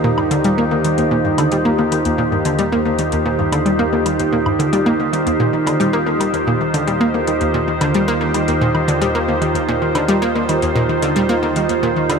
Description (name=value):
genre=ambient, sequencer-driven space music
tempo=112 BPM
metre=4/4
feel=straight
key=unclear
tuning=A4 = 440 Hz
part: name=evolving wavetable pad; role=sustained chords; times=0.0-12.2 s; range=Eb3 to C5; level=-17 LUFS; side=right 1 dB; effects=chorus, built-in reverb
part: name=analog pluck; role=riff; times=0.0-12.2 s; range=Eb2 to Bb3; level=-18 LUFS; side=equal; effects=chorus, tape echo
part: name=analog drone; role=bass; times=0.0-12.2 s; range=Eb2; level=-27 LUFS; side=equal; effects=chorus, phaser
part: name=electronic woodblock and hi-hat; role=percussion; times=0.2-12.2 s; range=none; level=-28 LUFS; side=left 2 dB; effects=tape echo
room=wet huge ambient reverb, RT60 8.2 s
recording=none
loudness=-14 LUFS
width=side -6 dB against mid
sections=0.0-12.2 A section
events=none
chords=0.0 Eb6